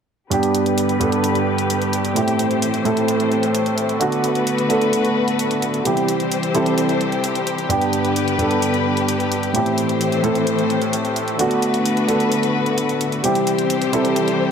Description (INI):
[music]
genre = EDM, festival progressive house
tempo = 130 BPM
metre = 4/4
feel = straight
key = G major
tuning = A4 = 440 Hz
[part]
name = dark baby grand piano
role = accompaniment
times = 0.3-14.5 s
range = G2 to A4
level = -18 LUFS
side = right 2 dB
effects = ping-pong delay
[part]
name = warm studio string section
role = sustained chords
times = 0.3-14.5 s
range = D3 to C5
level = -22 LUFS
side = left 4 dB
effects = low-pass filter
[part]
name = electronic hi-hat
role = drums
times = 0.3-14.4 s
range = none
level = -28 LUFS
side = equal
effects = none
[sound]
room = moderate lush hall reverb, RT60 2.5 s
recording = none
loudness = -17 LUFS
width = side -7 dB against mid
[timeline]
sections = 0.3-14.5 A section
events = none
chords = 0.3 G; 2.2 Am7; 4.0 D6; 5.9 C; 7.7 G; 9.5 Am7; 11.4 D6; 13.2 C